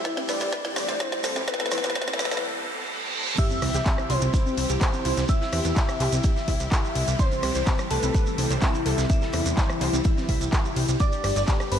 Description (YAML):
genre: progressive house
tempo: 126 BPM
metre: 4/4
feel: straight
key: C major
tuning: A4 = 440 Hz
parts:
  - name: soft octave-layered synth lead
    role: melody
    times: 0.0-11.8 s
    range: E4 to E5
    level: -30 LUFS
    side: left 2 dB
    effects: chorus, sidechain pumping, dub echo
  - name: supersaw pad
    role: sustained chords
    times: 0.0-11.8 s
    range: C3 to A4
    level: -33 LUFS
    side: equal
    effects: phaser, sidechain pumping
  - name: soft round pluck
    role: arpeggios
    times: 0.0-11.8 s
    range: C4 to E5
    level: -33 LUFS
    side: equal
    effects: ensemble chorus, sidechain pumping, dub echo
  - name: electronic kick drum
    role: drums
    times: 0.0-11.6 s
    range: none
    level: -23 LUFS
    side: equal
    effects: high-pass filter on kick, high-pass filter on room
  - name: shekere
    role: percussion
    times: 0.0-11.7 s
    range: none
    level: -37 LUFS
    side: right 6 dB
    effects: none
  - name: riser, reverse cymbal and sub drop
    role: sound effects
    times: 0.2-5.3 s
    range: none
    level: -34 LUFS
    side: right 3 dB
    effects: none
  - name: deep house drum kit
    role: drums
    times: 0.1-11.8 s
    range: crash cymbal, handclaps, hi-hat, rim click, snare drum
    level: -30 LUFS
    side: equal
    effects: none
  - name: congas and woodblock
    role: percussion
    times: 0.2-2.2 s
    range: none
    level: -42 LUFS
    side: equal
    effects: sidechain pumping on perc
  - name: plucky analog bass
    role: bass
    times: 0.3-11.8 s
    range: G1 to E2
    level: -27 LUFS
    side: equal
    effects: sidechain pumping, high-pass filter
  - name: soft synth bell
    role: second line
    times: 3.4-11.8 s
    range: E5 to E6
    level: -36 LUFS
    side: right 3 dB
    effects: chorus, vintage 12-bit sampler grit, sidechain pumping, dub echo
  - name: crunchy breakbeat drum kit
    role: drums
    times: 3.4-11.8 s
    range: hi-hat, snare drum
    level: -42 LUFS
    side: right 1 dB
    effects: none
room: light reverb, digital ambience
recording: dark, warm production, high-pass filter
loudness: -22 LUFS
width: side -9 dB against mid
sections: 0.0-3.4 A section; 3.4-11.8 B section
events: build-up 0.0-3.4; drum fill 0.0-2.4; filter sweep 0.0-3.4; riser 0.2-3.4; break 2.4-3.4; reverse cymbal 2.4-3.4; drop 3.4-11.8; impact 3.4-5.3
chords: 0.0 Am7; 3.4 C; 11.0 Gadd9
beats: 0.05 0.53 1.00 | 1.48 1.96 2.43 2.91 | 3.38 3.86 4.34 4.81 | 5.29 5.76 6.24 6.72 | 7.19 7.67 8.14 8.62 | 9.10 9.57 10.05 10.53 | 11.00 11.48